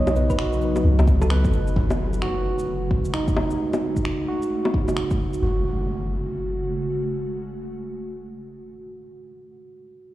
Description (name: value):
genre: future garage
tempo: 131 BPM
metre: 4/4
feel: swing 62% on 16ths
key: F# dorian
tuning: A4 = 439 Hz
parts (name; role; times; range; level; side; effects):
- barky tine electric piano; accompaniment; 0.0-10.1 s; D#4 to D#5; -29 LUFS; right 2 dB; overdrive, sidechain pumping, low-pass filter, analog delay
- ethereal airy pad; sustained chords; 0.0-8.6 s; C#3 to F#4; -29 LUFS; equal; ensemble chorus, built-in reverb, sidechain pumping
- soft 808-style bass; bass; 0.0-6.8 s; F#1 to C#2; -23 LUFS; equal; sidechain pumping
- electronic bongos, shaker, cabasa and finger snaps; drums; 0.1-5.4 s; none; -28 LUFS; left 2 dB; vintage 12-bit sampler grit
- thumb-piano-like synth pluck; melody; 0.3-1.8 s; A4 to B4; -32 LUFS; right 1 dB; chorus, analog delay
- electronic kick drum; drums; 0.3-5.2 s; none; -23 LUFS; equal; vintage 12-bit sampler grit
- impact; sound effects; 1.8-8.7 s; none; -33 LUFS; equal; none
room: light reverb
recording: played on a big sound system in a bare room, cassette tape, large studio reverb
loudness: -20 LUFS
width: side -15 dB against mid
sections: 0.0-1.8 A section; 1.8-5.4 B section; 5.4-9.1 C section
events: impact 1.8-3.6; filter sweep on tine electric piano 1.8-5.4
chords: 0.0 Badd9; 1.8 F#madd9